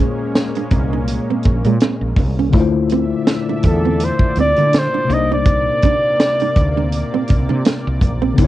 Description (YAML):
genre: R&B, neo-soul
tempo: 82 BPM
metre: 4/4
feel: swing 56% on 16ths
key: unclear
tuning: A4 = 440 Hz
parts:
  - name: nylon-string guitar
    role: second line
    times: 0.0-8.3 s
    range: Ab3 to Eb4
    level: -21 LUFS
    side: right 9 dB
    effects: cassette tape
  - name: mellow tine electric piano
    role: accompaniment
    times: 0.0-8.5 s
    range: Bb2 to C5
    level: -22 LUFS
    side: left 6 dB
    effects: medium stereo tremolo, cassette tape
  - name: lush unison pad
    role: sustained chords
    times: 0.0-8.5 s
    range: Bb2 to E5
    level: -26 LUFS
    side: equal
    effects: chorus, cassette tape
  - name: tight funk drum kit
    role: drums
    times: 0.4-8.5 s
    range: hi-hat, kick drum, snare drum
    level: -16 LUFS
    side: equal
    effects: cassette tape
  - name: woody fretless electric bass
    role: bass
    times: 0.7-8.5 s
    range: Bb1 to D3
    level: -19 LUFS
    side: equal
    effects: none
  - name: breathy flugelhorn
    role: melody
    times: 3.7-7.5 s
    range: A4 to Eb5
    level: -17 LUFS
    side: equal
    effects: cassette tape
room: little or no reverb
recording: home recording on cassette, nothing above 10.6 kHz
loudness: -14 LUFS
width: side -14 dB against mid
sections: 0.0-8.5 A section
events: none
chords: 0.0 Bbm9; 2.5 Dm9; 5.1 Cm9